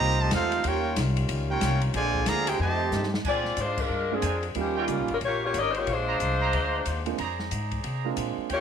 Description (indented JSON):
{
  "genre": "jazz, big band swing",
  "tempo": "183 BPM",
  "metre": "4/4",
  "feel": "swing 62% on 8ths",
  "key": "Bb mixolydian from 3.2 s",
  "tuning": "A4 = 440 Hz",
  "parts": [
    { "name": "clear trumpet section", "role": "melody", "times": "0.0-3.1 s", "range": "Eb4 to Bb5", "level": "-27 LUFS", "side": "right 1 dB", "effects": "slapback echo" },
    { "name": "warm trombone section", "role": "second line", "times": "0.0-3.1 s", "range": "C3 to G4", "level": "-33 LUFS", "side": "right 10 dB", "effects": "none" },
    { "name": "clear trombone section", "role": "sustained chords", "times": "0.0-3.2 s", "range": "D3 to Ab4", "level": "-35 LUFS", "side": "left 1 dB", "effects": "none" },
    { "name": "upright bass", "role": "bass", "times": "0.0-8.6 s", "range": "G1 to C3", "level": "-29 LUFS", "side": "left 1 dB", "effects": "none" },
    { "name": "open jazz drum kit", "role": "drums", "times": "0.3-8.6 s", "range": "crash cymbal, hi-hat, kick drum, ride cymbal, snare drum", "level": "-34 LUFS", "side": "left 2 dB", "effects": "none" },
    { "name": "warm saxophone section", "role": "melody", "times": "3.3-8.6 s", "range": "F3 to Eb5", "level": "-27 LUFS", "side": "left 3 dB", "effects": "slapback echo" },
    { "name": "warm trumpet section", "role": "stabs", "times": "3.3-8.6 s", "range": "D4 to Bb5", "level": "-34 LUFS", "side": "right 9 dB", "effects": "none" },
    { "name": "warm concert grand piano", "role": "accompaniment", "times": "4.1-8.5 s", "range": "G3 to F4", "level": "-31 LUFS", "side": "right 13 dB", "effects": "none" }
  ],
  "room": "moderate plate reverb, RT60 1.1 s, small room ambience",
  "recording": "1960s-style stereo",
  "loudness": "-24 LUFS",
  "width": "side -8 dB against mid",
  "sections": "0.0-3.2 A section; 3.2-8.6 B section",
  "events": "drum fill 2.9-3.2; band accent 3.7",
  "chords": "0.0 F9; 0.6 Eb9; 1.9 Bb9; 2.6 F9; 3.2 Bb9; 4.6 Eb9; 5.9 Bb9"
}